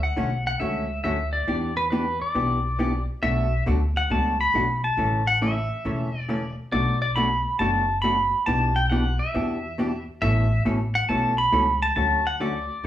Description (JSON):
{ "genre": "country, western swing", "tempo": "137 BPM", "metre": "4/4", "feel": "swing 68% on 8ths", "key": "D major", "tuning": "A4 = 439 Hz", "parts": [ { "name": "pedal steel guitar", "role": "melody", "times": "0.0-12.9 s", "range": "B4 to B5", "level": "-24 LUFS", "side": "equal", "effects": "none" }, { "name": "upright bass", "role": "bass", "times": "0.0-12.9 s", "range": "E1 to E2", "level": "-26 LUFS", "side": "equal", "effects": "none" }, { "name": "hollow-body jazz guitar", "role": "accompaniment", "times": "0.2-12.9 s", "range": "B2 to A4", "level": "-27 LUFS", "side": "equal", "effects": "none" } ], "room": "moderate large studio reverb, RT60 0.9 s", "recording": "band playing live in one room, small room ambience", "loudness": "-21 LUFS", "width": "side -12 dB against mid", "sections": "0.0-12.9 A section", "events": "none", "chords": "0.0 Dmaj7; 1.5 Em7; 3.2 Bm7; 5.0 A; 6.7 Bm7; 8.5 Em7/B; 10.2 Aadd9; 12.0 Dmaj7", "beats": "0.17 0.61 1.04 | 1.48 1.92 2.35 2.79 | 3.23 3.67 4.10 4.54 | 4.98 5.41 5.85 6.29 | 6.72 7.16 7.60 8.04 | 8.47 8.91 9.35 9.78 | 10.22 10.66 11.09 11.53 | 11.96 12.40 12.84" }